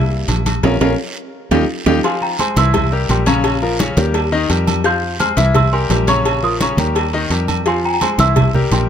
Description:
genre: latin, salsa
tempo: 171 BPM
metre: 4/4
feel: straight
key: F minor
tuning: A4 = 440 Hz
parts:
  - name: bright grand piano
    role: accompaniment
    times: 0.0-8.9 s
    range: Db3 to F5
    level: -19 LUFS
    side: left 4 dB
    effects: none
  - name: fingered electric bass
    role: bass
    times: 0.0-8.9 s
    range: Bb1 to F2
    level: -18 LUFS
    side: right 1 dB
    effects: none
  - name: congas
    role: percussion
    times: 0.1-8.9 s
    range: none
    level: -21 LUFS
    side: equal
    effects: none
  - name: agogo bells and timbales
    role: percussion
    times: 0.3-8.9 s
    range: none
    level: -23 LUFS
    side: right 7 dB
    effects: none
  - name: cowbell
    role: percussion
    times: 0.3-8.9 s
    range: none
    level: -25 LUFS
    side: left 6 dB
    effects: none
  - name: guiro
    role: percussion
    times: 0.3-8.9 s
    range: none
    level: -30 LUFS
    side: right 5 dB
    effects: none
  - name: small celesta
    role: melody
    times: 2.0-8.9 s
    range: F5 to G6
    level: -20 LUFS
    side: right 1 dB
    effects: none
room: light reverb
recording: none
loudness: -13 LUFS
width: side -8 dB against mid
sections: 0.0-2.0 A section; 2.0-8.9 B section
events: grand piano solo 0.0-2.0; band accent 0.6-2.0; drum fill 1.0-2.0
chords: 0.0 C7; 0.6 Bbm; 1.3 Ebadd9; 2.0 Fmadd9; 2.7 C7; 3.4 Bbm; 4.1 Ebadd9; 4.9 Fmadd9; 5.6 C7; 6.3 Bbm; 7.0 Ebadd9; 7.7 Fm; 8.4 C7

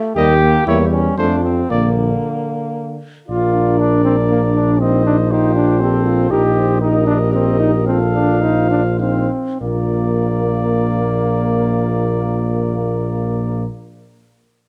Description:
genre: classical, brass quintet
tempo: 96-121 BPM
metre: 3/4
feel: rubato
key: Bb major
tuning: A4 = 440 Hz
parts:
  - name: bright trombone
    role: accompaniment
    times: 0.0-13.6 s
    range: D3 to G4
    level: -22 LUFS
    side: equal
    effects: none
  - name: clear trumpet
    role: melody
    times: 0.2-13.6 s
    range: C5 to F5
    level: -28 LUFS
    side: equal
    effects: none
  - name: warm flugelhorn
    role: second line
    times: 0.2-13.7 s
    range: Bb3 to C5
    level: -25 LUFS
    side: equal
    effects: none
  - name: clear French horn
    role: accompaniment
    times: 0.2-13.7 s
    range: A3 to G4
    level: -25 LUFS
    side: equal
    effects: none
  - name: warm tuba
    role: bass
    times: 0.2-13.6 s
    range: Bb1 to F2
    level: -20 LUFS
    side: equal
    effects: none
room: moderate recital hall reverb, RT60 1.5 s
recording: close, detailed microphones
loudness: -16 LUFS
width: mono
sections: 0.0-3.3 A section; 3.3-9.6 B section; 9.6-13.3 C section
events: slowing down 5.6-9.6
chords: 0.2 Eb; 0.7 Edim7; 1.2 F; 1.7 Bb; 4.8 F7/Bb; 6.3 Eb/Bb; 7.9 F7/Bb; 9.6 Bb

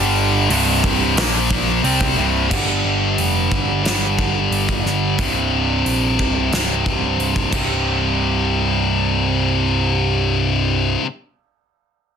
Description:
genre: hard rock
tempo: 90 BPM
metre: 4/4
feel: straight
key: unclear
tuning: A4 = 439 Hz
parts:
  - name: distorted electric guitar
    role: riff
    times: 0.0-11.1 s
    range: C2 to C4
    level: -22 LUFS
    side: right 11 dB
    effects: overdrive
  - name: heavy high-gain guitar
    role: riff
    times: 0.0-11.1 s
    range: C2 to C4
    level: -20 LUFS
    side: left 8 dB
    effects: distortion
  - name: heavy high-gain guitar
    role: riff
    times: 0.0-2.5 s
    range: C2 to C4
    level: -24 LUFS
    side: left 1 dB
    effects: distortion
  - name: overdriven picked electric bass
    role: bass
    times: 0.0-11.0 s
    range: C1 to C2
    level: -22 LUFS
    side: equal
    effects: none
  - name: gated 80s drum kit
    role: drums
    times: 0.5-7.7 s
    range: crash cymbal, hi-hat, kick drum, snare drum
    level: -23 LUFS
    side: right 1 dB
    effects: soft clipping on kick
room: moderate studio ambience, RT60 0.5 s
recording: dense, heavily limited modern master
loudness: -16 LUFS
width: side -7 dB against mid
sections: 0.0-2.5 A section; 2.5-7.9 B section; 7.9-10.5 C section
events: drum fill 7.5-7.9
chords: 0.5 C5; 1.2 Bb5; 1.8 C5; 2.5 G5; 5.2 C5

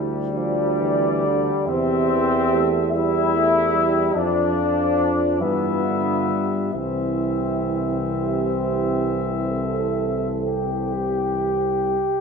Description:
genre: classical, hymn-like piece for brass band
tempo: 38-50 BPM (dotted quarters)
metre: 12/8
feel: rubato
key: C major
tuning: A4 = 439 Hz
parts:
  - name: mellow flugelhorn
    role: melody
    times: 0.0-12.2 s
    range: G4 to E5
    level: -27 LUFS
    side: left 8 dB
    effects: none
  - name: mellow French horn section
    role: second line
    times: 0.0-12.2 s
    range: D4 to A4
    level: -26 LUFS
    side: right 10 dB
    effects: none
  - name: clear euphonium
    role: accompaniment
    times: 0.0-11.6 s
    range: C3 to A3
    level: -29 LUFS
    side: right 2 dB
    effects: none
  - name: mellow trombone section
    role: accompaniment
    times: 0.0-11.9 s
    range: G3 to E4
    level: -24 LUFS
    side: left 2 dB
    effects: none
  - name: mellow tuba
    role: bass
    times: 0.0-12.0 s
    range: C2 to G2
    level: -26 LUFS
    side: left 1 dB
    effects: none
room: moderate concert hall reverb, RT60 1.9 s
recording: minimal, uncompressed stereo recording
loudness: -19 LUFS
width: side -5 dB against mid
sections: 0.0-12.2 A section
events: none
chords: 0.0 Bdim/D (rootless); 1.7 C/E; 4.1 Dm/F; 5.4 G6; 6.7 C

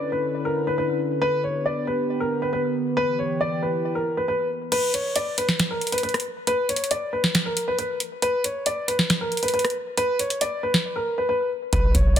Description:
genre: hip hop, trap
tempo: 137 BPM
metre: 4/4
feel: half-time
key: unclear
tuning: A4 = 440 Hz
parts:
  - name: warm baby grand piano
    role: melody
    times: 0.0-12.2 s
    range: A#4 to D5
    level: -24 LUFS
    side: left 1 dB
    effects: ping-pong delay
  - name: sweeping resonant pad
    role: sustained chords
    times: 0.0-4.7 s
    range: D3 to B4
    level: -27 LUFS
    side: equal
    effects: chorus, phaser
  - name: booming analog drum machine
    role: drums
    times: 4.7-12.2 s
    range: crash cymbal, finger snaps, hi-hat, kick drum, rim click, snare drum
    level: -23 LUFS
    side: equal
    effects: soft clipping on snare
  - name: warm 808-style bass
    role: bass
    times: 11.7-12.2 s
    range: B1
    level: -20 LUFS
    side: equal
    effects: none
room: light reverb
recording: dense, heavily limited modern master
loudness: -21 LUFS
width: side -10 dB against mid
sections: 0.0-4.7 A section; 4.7-12.2 B section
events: kick muted 4.7-11.7; break 10.9-11.7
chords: 0.0 Bmadd9; 1.2 G; 3.0 Em; 4.7 N.C.

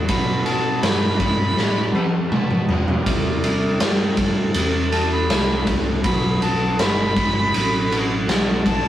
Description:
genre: blues rock power trio and southern rock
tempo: 81 BPM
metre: 4/4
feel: straight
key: unclear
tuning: A4 = 440 Hz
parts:
  - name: overdriven semi-hollow guitar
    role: riff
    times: 0.0-8.9 s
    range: B2 to A3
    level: -26 LUFS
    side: right 1 dB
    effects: none
  - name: overdriven picked electric bass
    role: bass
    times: 0.0-8.9 s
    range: G1 to C3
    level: -26 LUFS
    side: equal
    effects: none
  - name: warm harmonica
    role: melody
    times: 0.1-8.9 s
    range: A5 to B5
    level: -24 LUFS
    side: equal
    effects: overdrive
  - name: tonewheel organ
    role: sustained chords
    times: 0.1-8.7 s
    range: D#4 to B5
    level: -32 LUFS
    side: right 1 dB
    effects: overdrive
  - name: raw garage drum kit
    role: drums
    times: 0.1-8.8 s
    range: kick drum, ride cymbal, snare drum, toms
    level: -20 LUFS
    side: equal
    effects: none
room: light reverb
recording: rough rehearsal-room recording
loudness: -17 LUFS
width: side -12 dB against mid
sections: 0.0-8.9 A section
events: harmonica solo 0.0-8.9; drum fill 1.6-3.1; tonewheel organ fill 2.0-3.1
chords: 0.1 B7; 3.1 C7; 6.0 B7

